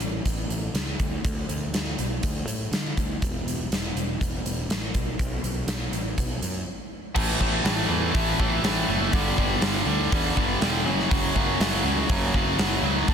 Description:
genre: quiet-loud alternative rock.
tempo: 122 BPM.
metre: 4/4.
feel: straight.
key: A major.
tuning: A4 = 440 Hz.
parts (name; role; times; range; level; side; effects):
fuzz picked electric bass; bass; 0.0-13.1 s; E1 to D3; -29 LUFS; equal; overdrive.
huge arena drum kit; drums; 0.0-13.1 s; crash cymbal, hi-hat, kick drum, snare drum; -26 LUFS; equal; none.
tight distorted guitar; riff; 7.1-13.1 s; F#2 to D4; -24 LUFS; equal; distortion.
room: studio reverb.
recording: dense, heavily limited modern master.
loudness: -22 LUFS.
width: side -7 dB against mid.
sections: 0.0-7.2 A section; 7.2-13.1 B section.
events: break 6.7-7.2.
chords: 0.0 A; 1.0 D5; 3.2 N.C.; 4.9 B5; 7.2 A5; 9.1 G5; 10.9 F#5.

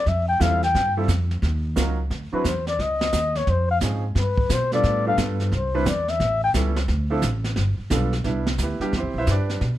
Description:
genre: jazz, small-group swing and bop.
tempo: 176 BPM.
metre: 4/4.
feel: swing 65% on 8ths.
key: C major.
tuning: A4 = 440 Hz.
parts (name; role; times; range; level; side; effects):
breathy flugelhorn; melody; 0.0-6.5 s; B4 to G5; -23 LUFS; left 3 dB; none.
upright bass; bass; 0.1-9.8 s; G1 to B2; -23 LUFS; equal; none.
jazz brush drum kit; drums; 0.1-9.8 s; brushed snare drum, hi-hat, kick drum, snare drum; -28 LUFS; right 1 dB; none.
clear baby grand piano; accompaniment; 0.4-9.6 s; F3 to E5; -27 LUFS; right 3 dB; none.
room: light reverb.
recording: none.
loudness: -20 LUFS.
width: side -13 dB against mid.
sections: 0.0-8.3 A section; 8.3-9.8 A section.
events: flugelhorn solo 0.0-8.3.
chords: 0.1 Fmaj9; 1.4 Ebm9; 2.1 D9; 2.8 Dbmaj7; 4.2 G7; 5.5 Cmaj9; 6.2 A7; 6.9 Dm7; 7.6 G7; 8.3 Cmaj9.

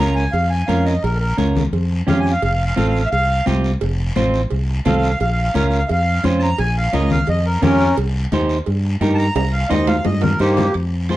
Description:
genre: latin, cumbia.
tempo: 173 BPM.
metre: 4/4.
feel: straight.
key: unclear.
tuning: A4 = 439 Hz.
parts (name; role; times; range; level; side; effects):
accordion; melody; 0.0-10.7 s; Bb3 to Bb5; -20 LUFS; equal; none.
clean electric guitar; accompaniment; 0.0-11.2 s; C4 to C5; -20 LUFS; right 2 dB; none.
fingered electric bass; bass; 0.0-11.2 s; F1 to G2; -19 LUFS; equal; none.
congas; percussion; 0.0-11.2 s; none; -23 LUFS; left 4 dB; none.
cowbell and timbales; percussion; 0.0-11.2 s; none; -27 LUFS; right 6 dB; none.
guiro; percussion; 0.0-11.2 s; none; -34 LUFS; left 2 dB; none.
room: moderate studio ambience, RT60 0.5 s.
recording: dark, warm production.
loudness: -15 LUFS.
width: side -15 dB against mid.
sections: 0.0-10.8 A section.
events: accordion solo 0.0-10.8; drum fill 9.4-10.8.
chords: 0.0 Bbm; 2.4 F; 5.2 Bbm; 8.0 Cm7.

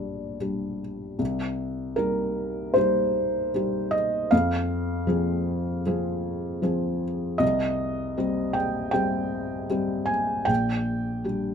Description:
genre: neoclassical minimalist piano.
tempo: 77 BPM.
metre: 4/4.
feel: rubato.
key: C minor.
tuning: A4 = 438 Hz.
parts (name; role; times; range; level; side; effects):
felt-muted upright piano; solo; 0.0-11.5 s; Bb1 to Ab5; -24 LUFS; equal; none.
room: moderate studio ambience, RT60 0.5 s.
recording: minimal, uncompressed stereo recording.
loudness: -24 LUFS.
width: side -7 dB against mid.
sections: 0.0-11.5 A section.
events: none.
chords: 0.0 Gm/Bb; 1.2 Cm; 4.3 Fm; 7.4 Cm; 10.5 Gm/Bb.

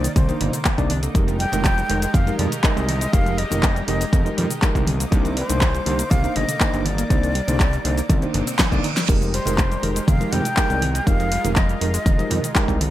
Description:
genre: nu-disco, nu disco.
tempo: 121 BPM.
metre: 4/4.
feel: straight.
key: F dorian.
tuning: A4 = 439 Hz.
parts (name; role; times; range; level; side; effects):
breathy mellow silver concert flute; melody; 0.0-12.8 s; C5 to G5; -27 LUFS; left 1 dB; digital delay.
tine electric piano; accompaniment; 0.0-12.8 s; Ab3 to D5; -27 LUFS; right 2 dB; medium stereo tremolo, sidechain pumping.
lush unison pad; sustained chords; 0.0-12.9 s; Ab3 to D6; -32 LUFS; right 1 dB; chorus, sidechain pumping.
analog pluck; arpeggios; 0.0-12.8 s; D3 to Eb4; -31 LUFS; left 3 dB; chorus, cassette tape, sidechain pumping, digital delay.
fat analog bass; bass; 0.0-12.9 s; F1 to F2; -24 LUFS; equal; none.
pop drum kit; drums; 0.0-12.9 s; crash cymbal, handclaps, hi-hat, shaker, snare drum; -25 LUFS; equal; none.
electronic kick drum; drums; 0.2-12.8 s; none; -19 LUFS; equal; none.
congas; percussion; 0.2-12.9 s; none; -28 LUFS; right 2 dB; none.
reverse cymbal; sound effects; 8.3-9.1 s; none; -30 LUFS; right 6 dB; none.
room: light reverb.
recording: bright 1980s-style digital production.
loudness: -18 LUFS.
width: side -14 dB against mid.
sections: 0.0-12.9 A section.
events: reverse cymbal 8.3-9.1; drum fill 8.6-9.1.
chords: 0.0 Cm9; 1.2 Fm11; 4.9 Cm9; 9.1 Fm11.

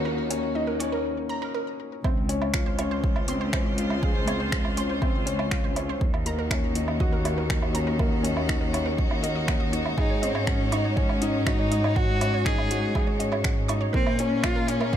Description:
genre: piano and strings electronica.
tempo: 121 BPM.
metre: 4/4.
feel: straight.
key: Db major.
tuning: A4 = 440 Hz.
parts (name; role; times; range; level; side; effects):
clear string quartet; sustained chords; 0.0-15.0 s; Db3 to Db5; -33 LUFS; right 2 dB; none.
warm upright piano; riff; 0.0-15.0 s; Bb3 to Ab4; -30 LUFS; left 3 dB; ping-pong delay.
dark chamber cello section; bass; 0.0-15.0 s; Db2 to Bb2; -29 LUFS; equal; sidechain pumping.
analog pluck; arpeggios; 0.1-15.0 s; Bb4 to Db6; -35 LUFS; right 4 dB; chorus, sidechain pumping, ping-pong delay.
deep house drum kit; drums; 0.3-14.9 s; finger snaps, hi-hat, woodblock; -32 LUFS; right 2 dB; overdrive, high-pass filter on hats, high-pass filter on perc, high-pass filter on snare.
electronic kick drum; drums; 2.0-15.0 s; none; -27 LUFS; right 1 dB; overdrive.
rich cello; melody; 10.0-15.0 s; C4 to Ab4; -29 LUFS; equal; none.
room: light reverb.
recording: none.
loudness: -23 LUFS.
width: side -10 dB against mid.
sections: 0.0-2.0 A section; 2.0-15.0 B section.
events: build-up 0.0-2.0; break 1.1-2.0; drop 2.0-15.0.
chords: 0.0 Ebm7; 2.0 Dbmaj7; 6.0 Ebm7; 10.0 Ab7sus4; 13.9 Bbm7.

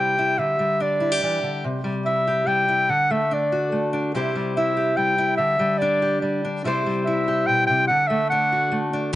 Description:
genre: folk.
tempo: 144 BPM.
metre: 3/4.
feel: straight.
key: unclear.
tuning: A4 = 439 Hz.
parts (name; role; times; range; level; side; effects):
warm clarinet; melody; 0.0-8.9 s; D5 to G5; -20 LUFS; equal; none.
fingerpicked steel-string acoustic guitar; accompaniment; 0.0-9.1 s; B2 to C5; -23 LUFS; left 1 dB; none.
room: light reverb, studio ambience.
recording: nothing above 10.9 kHz.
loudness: -19 LUFS.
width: side -15 dB against mid.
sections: 0.0-9.1 A section.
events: none.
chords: 0.4 G5/D; 1.6 C; 2.9 D; 4.1 C; 5.4 G5/D; 6.6 C; 7.9 D.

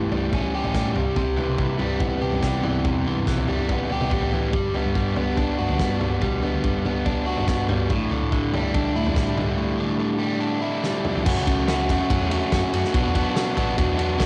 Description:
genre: indie rock.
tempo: 143 BPM.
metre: 4/4.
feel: straight.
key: unclear.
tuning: A4 = 440 Hz.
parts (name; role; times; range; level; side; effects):
overdriven electric guitar; riff; 0.0-14.3 s; F#2 to G4; -26 LUFS; equal; cassette tape.
twelve-string electric guitar; riff; 0.0-11.3 s; A2 to F#4; -33 LUFS; equal; ensemble chorus, cassette tape.
hollow-body short-scale picked electric bass; bass; 0.0-14.3 s; F#1 to C3; -30 LUFS; equal; none.
loose indie drum kit; drums; 0.1-14.3 s; crash cymbal, kick drum, ride cymbal, snare drum, toms; -28 LUFS; equal; cassette tape.
room: light reverb.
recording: home recording on cassette.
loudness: -23 LUFS.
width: mono.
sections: 0.0-11.3 A section; 11.3-14.3 B section.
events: drum fill 10.8-11.3.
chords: 0.0 A7; 1.0 Cmaj7; 4.5 Gmaj7; 7.9 A7sus4; 11.3 F#m7; 12.9 Bm7.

